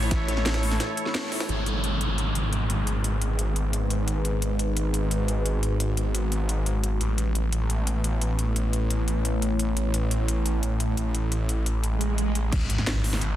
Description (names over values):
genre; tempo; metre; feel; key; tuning
dark technical drum and bass; 174 BPM; 4/4; straight; G# phrygian; A4 = 439 Hz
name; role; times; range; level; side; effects
deep dark ambient pad; sustained chords; 0.0-12.5 s; G#3 to C#5; -31 LUFS; left 1 dB; chorus, built-in reverb, sidechain pumping
snarling distorted saw bass; bass; 0.0-13.4 s; G#1 to A1; -25 LUFS; equal; distortion, tube saturation
jungle sampler-style drum kit; drums; 0.0-1.5, 12.5-13.3 s; hi-hat, snare drum; -35 LUFS; right 1 dB; high-pass filter on hats, studio reverb, high-pass filter on snare, high-pass filter on room
drum and bass drum kit; drums; 0.1-13.3 s; crash cymbal, hi-hat, snare drum; -31 LUFS; left 1 dB; studio reverb
electronic kick drum; drums; 0.1-0.2, 12.5-12.6 s; none; -26 LUFS; equal; studio reverb
downlifter, swell and impact; sound effects; 1.5-4.2, 11.9-13.4 s; none; -30 LUFS; right 1 dB; none
room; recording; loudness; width
light reverb, digital ambience; dense, heavily limited modern master; -23 LUFS; side -13 dB against mid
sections
0.0-1.5 A section; 1.5-12.5 B section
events
drop 0.0-1.5; break 0.8-1.5; band accent 1.1; filter sweep on ambient pad 1.5-12.5; swell 11.9-12.5; impact 12.5-13.4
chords
0.0 A; 1.5 G#m; 7.0 A; 12.5 N.C.